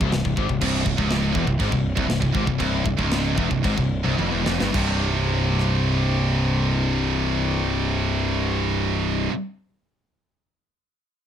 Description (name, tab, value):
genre	heavy metal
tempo	105-124 BPM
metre	4/4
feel	straight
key	C major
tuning	A4 = 439 Hz
part	thick fuzz guitar	riff	0.0-9.3 s	C2 to C3	-26 LUFS	equal	distortion
part	tight distorted guitar	riff	0.0-9.3 s	C2 to C3	-27 LUFS	left 8 dB	distortion
part	fuzz picked electric bass	bass	0.0-9.3 s	C1 to Ab1	-25 LUFS	equal	overdrive
part	tight metal drum kit	drums	0.0-5.7 s	china cymbal, crash cymbal, kick drum, rim click, snare drum, toms	-27 LUFS	equal	none
part	scooped high-gain guitar	riff	0.6-9.3 s	C2 to C3	-26 LUFS	right 8 dB	distortion
room	little or no reverb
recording	none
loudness	-20 LUFS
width	side -9 dB against mid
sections	0.0-4.7 A section; 4.7-9.3 B section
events	slowing down 0.6-4.7; drum fill 4.2-4.7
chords	0.0 C; 4.7 C5